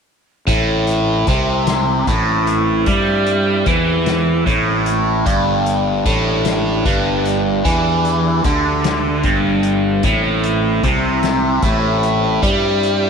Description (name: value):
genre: psychedelic rock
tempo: 50 BPM (dotted quarters)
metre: 6/8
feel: straight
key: A minor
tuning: A4 = 440 Hz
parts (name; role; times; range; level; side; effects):
- mellow hollow flute section; sustained chords; 0.5-13.1 s; C4 to E5; -27 LUFS; right 6 dB; none
- biting overdriven guitar; riff; 0.5-13.1 s; G2 to G3; -16 LUFS; equal; phaser
- fuzz fingered electric bass; bass; 0.5-13.1 s; G1 to G2; -20 LUFS; equal; overdrive
- soft-mallet drum kit; drums; 0.5-13.0 s; hi-hat, kick drum, snare drum; -22 LUFS; left 2 dB; none
room: light reverb, small room ambience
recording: 1960s-style stereo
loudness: -14 LUFS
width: side -6 dB against mid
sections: 0.5-13.1 A section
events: none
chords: 0.5 Am; 5.3 G5; 10.0 Am